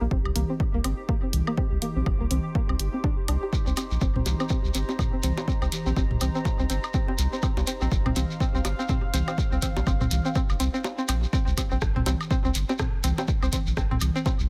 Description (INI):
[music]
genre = minimal techno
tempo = 123 BPM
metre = 4/4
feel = swing 58% on 16ths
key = C minor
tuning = A4 = 440 Hz
[part]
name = string-like resonator pluck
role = riff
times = 0.0-14.3 s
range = Bb3 to G4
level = -34 LUFS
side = equal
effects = chorus, sidechain pumping, tape echo
[part]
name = saturated sub bass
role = bass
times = 0.0-14.5 s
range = G1 to C2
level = -28 LUFS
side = equal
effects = sidechain pumping
[part]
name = pulsing gated texture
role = texture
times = 0.0-11.3 s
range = G4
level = -45 LUFS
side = equal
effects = chorus, built-in reverb, sidechain pumping
[part]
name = warbly tape-like pad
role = texture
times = 0.0-11.4 s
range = Eb4 to D6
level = -41 LUFS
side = equal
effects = chorus, built-in reverb, sidechain pumping
[part]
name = electronic kick drum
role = drums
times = 0.1-14.4 s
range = none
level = -29 LUFS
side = equal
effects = none
[part]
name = electronic woodblock, congas, bongos and toms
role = percussion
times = 0.3-14.4 s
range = none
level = -35 LUFS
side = equal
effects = tape echo
[part]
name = punchy analog drum machine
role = drums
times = 0.4-14.1 s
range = hi-hat, rim click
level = -34 LUFS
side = equal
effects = none
[part]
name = shekere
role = percussion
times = 3.5-14.5 s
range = none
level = -39 LUFS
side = equal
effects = none
[sound]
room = little or no reverb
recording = none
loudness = -26 LUFS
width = mono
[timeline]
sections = 0.0-11.3 A section; 11.3-14.5 B section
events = fade-in on ambient pad 0.0-11.3; filter sweep on synth pluck 0.0-11.3; kick drops out 10.8-11.3; drop 11.3-14.5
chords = 0.0 Cm7; 11.3 C5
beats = 0.11 0.60 1.09 | 1.58 2.06 2.55 3.04 | 3.53 4.01 4.50 4.99 | 5.48 5.97 6.45 6.94 | 7.43 7.92 8.40 8.89 | 9.38 9.87 10.36 10.84 | 11.33 11.82 12.31 12.79 | 13.28 13.77 14.26